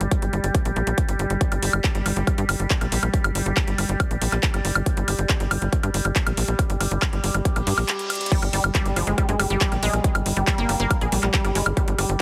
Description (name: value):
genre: psychedelic trance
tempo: 139 BPM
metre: 4/4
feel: straight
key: G phrygian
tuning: A4 = 440 Hz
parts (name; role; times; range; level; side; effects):
- overtone-sweeping drone; sustained chords; 0.0-12.2 s; G3; -33 LUFS; equal; chorus, built-in reverb, sidechain pumping
- tight sequencer bass; bass; 0.0-12.2 s; G1 to G2; -26 LUFS; equal; none
- big-room dance drum kit; drums; 0.0-12.2 s; crash cymbal, handclaps, hi-hat, woodblock; -28 LUFS; equal; none
- electronic kick drum; drums; 0.1-11.9 s; none; -26 LUFS; equal; none
- reverse cymbal; sound effects; 7.6-8.3 s; none; -36 LUFS; equal; none
- unison pluck; riff; 8.3-12.1 s; F3 to Ab4; -28 LUFS; equal; sidechain pumping, dub echo
room: light reverb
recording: heavily compressed radio sound, multiband compression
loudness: -22 LUFS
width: mono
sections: 0.0-12.2 A section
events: reverse cymbal 7.6-8.3; drum fill 8.1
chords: 0.0 G5